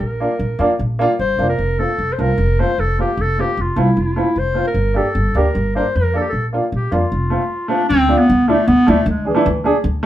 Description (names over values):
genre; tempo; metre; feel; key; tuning
klezmer; 152 BPM; 4/4; straight; F major; A4 = 440 Hz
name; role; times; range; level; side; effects
mellow clarinet; melody; 0.0-9.7 s; E3 to C5; -18 LUFS; equal; none
upright bass; bass; 0.0-10.1 s; F1 to F2; -19 LUFS; equal; none
clear upright piano; accompaniment; 0.2-10.1 s; A3 to Bb4; -19 LUFS; right 1 dB; none
room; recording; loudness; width
wet studio reverb, RT60 0.5 s; band playing live in one room; -14 LUFS; side -12 dB against mid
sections
0.0-7.9 A section; 7.9-10.1 B section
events
none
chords
0.0 Bb; 1.6 F; 4.8 Gm; 6.3 Bb; 7.1 F; 7.9 D5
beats
| 0.02 0.41 0.81 1.20 | 1.60 1.99 2.39 2.78 | 3.18 3.57 3.97 4.36 | 4.76 5.15 5.55 5.94 | 6.33 6.73 7.12 7.51 | 7.90 8.29 8.68 9.07 | 9.46 9.84